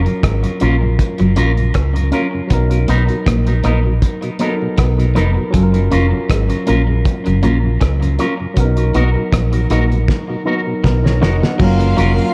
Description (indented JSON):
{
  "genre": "lovers rock reggae",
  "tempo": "79 BPM",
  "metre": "4/4",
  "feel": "swing 55% on 16ths",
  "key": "F# major",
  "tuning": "A4 = 439 Hz",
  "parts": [
    { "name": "barky tine electric piano", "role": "accompaniment", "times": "0.0-12.3 s", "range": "F#3 to F#5", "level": "-24 LUFS", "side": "equal", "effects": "overdrive, tape echo" },
    { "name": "vintage muted fingered electric bass", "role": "bass", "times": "0.0-12.2 s", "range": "E#1 to C#2", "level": "-18 LUFS", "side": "equal", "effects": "none" },
    { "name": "mellow tonewheel organ", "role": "accompaniment", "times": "0.1-12.2 s", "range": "F#2 to E#4", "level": "-28 LUFS", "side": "equal", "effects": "none" },
    { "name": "cloth-damped thuddy drum kit", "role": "drums", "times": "0.1-12.3 s", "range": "crash cymbal, hi-hat, kick drum, rim click, snare drum", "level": "-20 LUFS", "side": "equal", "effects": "none" },
    { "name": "electric guitar at the edge of break-up", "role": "riff", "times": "0.2-12.1 s", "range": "E#3 to C#4", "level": "-25 LUFS", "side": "equal", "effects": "subtle chorus, tape echo" },
    { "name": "electric guitar with an envelope filter", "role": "stabs", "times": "0.6-12.1 s", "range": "B3 to A#4", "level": "-24 LUFS", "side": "equal", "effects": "spring reverb, tape echo" },
    { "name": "rich studio string section", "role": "second line", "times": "11.6-12.3 s", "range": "E#4 to E#5", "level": "-24 LUFS", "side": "equal", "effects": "none" }
  ],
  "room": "light reverb",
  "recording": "dark, warm production",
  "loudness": "-15 LUFS",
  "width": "mono",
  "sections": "0.0-11.6 A section",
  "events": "drum fill 10.1-11.6",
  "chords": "0.0 F#maj7; 2.5 Bmaj7; 5.5 F#maj7; 8.6 Bmaj7; 11.6 F#maj7"
}